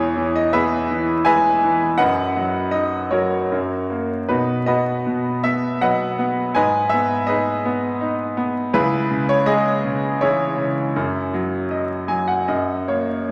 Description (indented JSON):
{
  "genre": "classical, lyrical solo piano",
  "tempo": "74-84 BPM",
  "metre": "3/4",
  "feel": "rubato",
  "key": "B major",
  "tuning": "A4 = 440 Hz",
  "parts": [
    { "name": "bright concert grand piano", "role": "solo", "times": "0.0-13.3 s", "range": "C#2 to G#5", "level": "-20 LUFS", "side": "equal", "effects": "none" }
  ],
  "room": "wet concert hall reverb, RT60 2.0 s",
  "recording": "vinyl crackle",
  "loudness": "-20 LUFS",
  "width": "mono",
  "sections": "0.0-13.3 A section",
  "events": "grand piano fill 11.7-13.3",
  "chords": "0.0 E; 2.0 B/F#; 3.5 F#; 4.3 B; 6.6 G#m; 8.7 C#m; 11.0 Emaj13/F#; 12.5 F#"
}